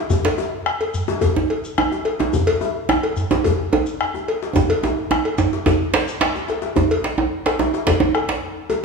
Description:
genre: west african traditional, West African drum ensemble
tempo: 108 BPM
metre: 4/4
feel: straight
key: none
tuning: none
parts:
  - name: bombo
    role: percussion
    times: 0.1-8.4 s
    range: none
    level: -24 LUFS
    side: left 3 dB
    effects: none
  - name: djembe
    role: percussion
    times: 0.1-8.8 s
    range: none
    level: -25 LUFS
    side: left 5 dB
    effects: none
  - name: shekere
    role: percussion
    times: 0.1-6.4 s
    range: none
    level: -28 LUFS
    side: equal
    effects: none
  - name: djembe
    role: percussion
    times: 0.2-8.4 s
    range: none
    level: -21 LUFS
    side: right 5 dB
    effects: none
  - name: cowbell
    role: percussion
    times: 0.3-8.8 s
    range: none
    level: -25 LUFS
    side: left 1 dB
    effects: none
room: wet recital hall reverb, RT60 1.8 s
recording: studio ambience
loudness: -17 LUFS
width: side -4 dB against mid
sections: 0.0-6.8 A section; 6.8-8.8 B section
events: drum fill 4.6-6.8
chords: none

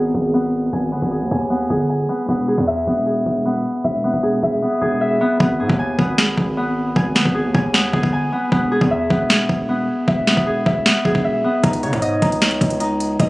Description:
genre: hip hop, trap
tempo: 154 BPM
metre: 4/4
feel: half-time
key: G# harmonic minor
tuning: A4 = 440 Hz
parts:
  - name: concert harp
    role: arpeggios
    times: 0.0-13.3 s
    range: B3 to G#5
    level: -18 LUFS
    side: equal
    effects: tape echo
  - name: distorted 808-style bass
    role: bass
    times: 0.0-13.3 s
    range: E1 to C#3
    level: -23 LUFS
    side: equal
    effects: distortion
  - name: trap drum kit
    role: drums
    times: 5.4-13.3 s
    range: hi-hat, kick drum, snare drum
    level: -17 LUFS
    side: equal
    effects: overdrive, vintage 12-bit sampler grit
room: light reverb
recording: recorded on a phone in the room, studio ambience, compression, low-pass filter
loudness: -16 LUFS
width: side -20 dB against mid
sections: 0.0-5.4 A section; 5.4-13.3 B section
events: filter sweep 0.0-5.4; hi-hats muted 5.4-11.6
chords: 0.0 G#m; 2.3 E; 5.4 G#m; 8.5 E; 11.6 C#sus2

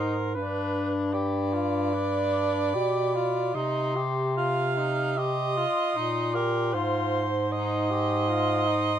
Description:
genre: classical, lyrical piece for single-reed quartet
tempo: 76 BPM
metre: 4/4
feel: rubato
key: C minor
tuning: A4 = 440 Hz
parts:
  - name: mellow clarinet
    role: melody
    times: 0.0-9.0 s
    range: B5 to C6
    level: -34 LUFS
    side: left 7 dB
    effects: none
  - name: warm alto saxophone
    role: second line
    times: 0.0-9.0 s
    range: Bb4 to F5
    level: -29 LUFS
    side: right 6 dB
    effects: none
  - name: warm tenor saxophone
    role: accompaniment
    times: 0.0-9.0 s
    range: D4 to G4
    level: -32 LUFS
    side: left 4 dB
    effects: none
  - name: warm bass clarinet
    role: bass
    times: 0.0-9.0 s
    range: G2 to C3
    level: -28 LUFS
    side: equal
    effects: none
room: light reverb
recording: dark, warm production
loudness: -24 LUFS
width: side -10 dB against mid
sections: 0.0-9.0 A section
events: none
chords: 0.3 G; 3.5 Cm; 6.7 Ab

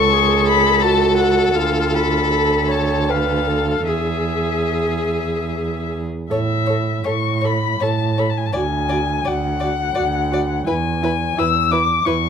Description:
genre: classical, slow romantic movement for string quartet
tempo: 71-88 BPM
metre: 3/4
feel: rubato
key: A major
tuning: A4 = 440 Hz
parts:
  - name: muted violin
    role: melody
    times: 0.0-12.3 s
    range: E5 to E6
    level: -20 LUFS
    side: left 8 dB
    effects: none
  - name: muted violin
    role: second line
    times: 0.0-12.1 s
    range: G#4 to D5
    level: -25 LUFS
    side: left 3 dB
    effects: none
  - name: muted viola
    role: accompaniment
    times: 0.0-12.1 s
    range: E4 to C#5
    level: -23 LUFS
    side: right 4 dB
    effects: none
  - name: muted cello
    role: bass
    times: 0.0-12.3 s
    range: C#2 to A2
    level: -21 LUFS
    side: right 4 dB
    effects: none
room: moderate recital hall reverb, RT60 1.6 s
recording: close, detailed microphones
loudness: -16 LUFS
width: side -7 dB against mid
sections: 0.0-6.3 A section; 6.3-12.3 B section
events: none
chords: 0.0 A/C#; 1.5 Dm; 3.9 E; 6.3 A; 8.6 D; 10.7 E

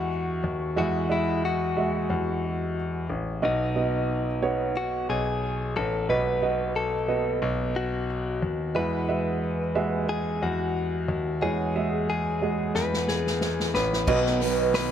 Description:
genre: piano-driven pop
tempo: 90 BPM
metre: 4/4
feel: swing 56% on 16ths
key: unclear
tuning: A4 = 441 Hz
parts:
  - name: direct-recorded clean electric guitar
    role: melody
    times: 0.0-14.9 s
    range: D#4 to B4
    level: -29 LUFS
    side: left 4 dB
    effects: none
  - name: warm upright piano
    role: accompaniment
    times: 0.0-14.9 s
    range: B2 to E5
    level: -29 LUFS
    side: right 5 dB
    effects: none
  - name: bright concert grand piano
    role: bass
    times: 0.0-14.9 s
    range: A1 to E2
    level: -29 LUFS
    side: left 2 dB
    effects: none
  - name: unplugged drum kit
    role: drums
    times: 12.7-14.9 s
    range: crash cymbal, hi-hat, kick drum, snare drum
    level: -29 LUFS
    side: left 1 dB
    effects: none
  - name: lush unison pad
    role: sustained chords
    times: 14.1-14.9 s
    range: D#3 to B3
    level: -32 LUFS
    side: equal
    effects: chorus
  - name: picked steel-string acoustic guitar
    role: riff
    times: 14.1-14.9 s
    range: B2 to B4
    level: -26 LUFS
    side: right 12 dB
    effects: none
room: light reverb, small room ambience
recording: none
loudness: -24 LUFS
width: side -9 dB against mid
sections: 0.0-14.1 A section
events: drum fill 12.7-14.1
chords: 0.0 Eadd9; 3.4 B; 8.8 Eadd9; 14.1 B

